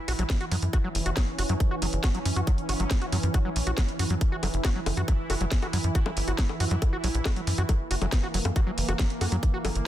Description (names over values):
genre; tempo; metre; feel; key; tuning
psychedelic trance; 138 BPM; 4/4; straight; unclear; A4 = 440 Hz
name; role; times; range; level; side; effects
bubbling stepped-filter texture; sustained chords; 0.0-9.9 s; E3 to E4; -33 LUFS; right 2 dB; chorus, built-in reverb, sidechain pumping
overdriven acid bass; riff; 0.1-9.7 s; F#3 to F#4; -34 LUFS; equal; distortion, auto-pan, sidechain pumping, ping-pong delay
tight sequencer bass; bass; 0.1-9.8 s; F#1 to F#2; -27 LUFS; equal; none
drum and bass drum kit; drums; 0.1-9.8 s; bongos, hi-hat, snare drum; -32 LUFS; left 1 dB; studio reverb
electronic kick drum; drums; 0.3-9.5 s; none; -24 LUFS; equal; studio reverb
room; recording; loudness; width
little or no reverb; dense, heavily limited modern master; -24 LUFS; side -12 dB against mid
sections
0.0-9.9 A section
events
none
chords
0.0 F#5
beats
0.30 | 0.73 1.17 1.60 2.04 | 2.47 2.91 3.34 3.78 | 4.21 4.65 5.08 5.51 | 5.95 6.38 6.82 7.25 | 7.69 8.12 8.56 8.99 | 9.43 9.86